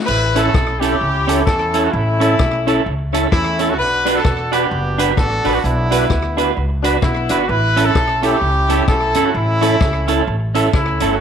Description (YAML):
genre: ska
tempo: 130 BPM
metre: 4/4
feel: swing 59% on 8ths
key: unclear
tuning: A4 = 440 Hz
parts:
  - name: clear horn section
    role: melody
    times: 0.0-11.2 s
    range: A3 to B4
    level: -18 LUFS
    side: left 1 dB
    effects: slapback echo
  - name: upright bass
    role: bass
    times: 0.1-11.2 s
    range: E1 to E2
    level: -20 LUFS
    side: equal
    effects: transformer saturation
  - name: swinging big-band drum kit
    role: drums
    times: 0.1-11.1 s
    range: crash cymbal, hi-hat, kick drum, rim click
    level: -20 LUFS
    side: left 2 dB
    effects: slapback echo
  - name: tonewheel organ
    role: stabs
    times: 0.3-11.2 s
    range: C#4 to B4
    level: -23 LUFS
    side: left 11 dB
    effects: overdrive, chorus vibrato, slow rotary speaker
  - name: semi-hollow electric guitar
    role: accompaniment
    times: 0.4-11.2 s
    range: C#4 to B4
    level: -20 LUFS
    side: right 11 dB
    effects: slapback echo
room: moderate spring reverb, RT60 1.4 s, studio reverb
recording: 1960s-style stereo with parts hard left and right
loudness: -14 LUFS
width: side -8 dB against mid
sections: 0.1-11.2 A section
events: none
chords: 0.1 A; 3.8 Bm; 7.5 A